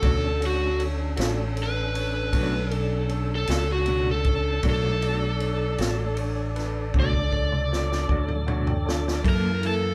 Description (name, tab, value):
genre	slow blues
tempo	52 BPM (dotted quarters)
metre	12/8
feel	straight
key	B minor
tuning	A4 = 440 Hz
part	overdriven slide guitar	melody	0.0-9.9 s	F#4 to D5	-30 LUFS	equal	none
part	barky tine electric piano	accompaniment	0.0-9.9 s	D4 to A5	-38 LUFS	equal	none
part	mellow electric guitar	accompaniment	0.0-9.9 s	B2 to A4	-34 LUFS	equal	tremolo
part	tonewheel organ	sustained chords	0.0-9.9 s	E3 to A5	-37 LUFS	equal	slow rotary speaker
part	mellow fretless electric bass	bass	0.0-9.9 s	A1 to F#2	-29 LUFS	equal	none
part	vintage drum kit	drums	0.0-9.8 s	kick drum, ride cymbal, snare drum, toms	-31 LUFS	equal	none
room	moderate large studio reverb, RT60 0.9 s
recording	band playing live in one room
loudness	-25 LUFS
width	mono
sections	0.0-9.9 A section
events	electric slide guitar solo 0.0-9.9; drum fill 6.9-9.2; tine electric piano fill 8.1-9.2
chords	0.0 Bm7; 9.2 F#7#9